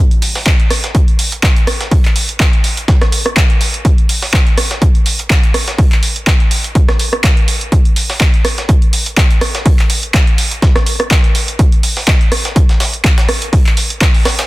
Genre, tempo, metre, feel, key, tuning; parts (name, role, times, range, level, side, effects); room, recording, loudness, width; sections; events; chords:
house; 124 BPM; 4/4; swing 55% on 16ths
punchy analog drum machine; drums; 0.1-14.5 s; handclaps, hi-hat, rim click; -16 LUFS; right 1 dB
breakbeat sampler-style drum kit; drums; 0.2-14.5 s; hi-hat, snare drum; -24 LUFS; right 1 dB; high-pass filter on hats, high-pass filter on snare
electronic kick drum; drums; 0.5-14.1 s; -11 LUFS; equal
little or no reverb; dense, heavily limited modern master; -10 LUFS; side -19 dB against mid
0.0-14.5 A section